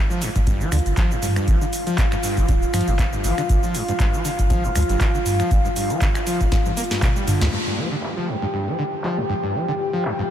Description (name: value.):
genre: acid house.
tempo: 119 BPM.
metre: 4/4.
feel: swing 55% on 16ths.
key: unclear.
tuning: A4 = 442 Hz.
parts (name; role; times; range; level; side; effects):
warbly tape-like pad; sustained chords; 0.1-10.3 s; F4 to G5; -26 LUFS; equal; chorus, built-in reverb, sidechain pumping.
overdriven acid bass; riff; 0.1-10.2 s; G2 to Bb3; -26 LUFS; equal; distortion, lush chorus, sidechain pumping, ping-pong delay.
booming analog drum machine; drums; 0.1-10.3 s; finger snaps, handclaps, hi-hat, shaker, snare drum, toms; -28 LUFS; equal; low-pass filter on perc, low-pass filter on hats, low-pass filter on snare, low-pass filter on toms.
warm sub bass; bass; 0.4-7.5 s; D1 to G2; -22 LUFS; equal; sidechain pumping.
electronic kick drum; drums; 0.4-7.1 s; none; -20 LUFS; equal; none.
room: moderate huge ambient reverb, RT60 3.8 s.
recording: dreamy mix soaked in reverb.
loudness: -18 LUFS.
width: side -10 dB against mid.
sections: 0.0-7.5 A section; 7.5-10.3 B section.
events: drum fill 6.5-7.5; band accent 7.4.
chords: 0.0 G7(no3); 7.5 G5.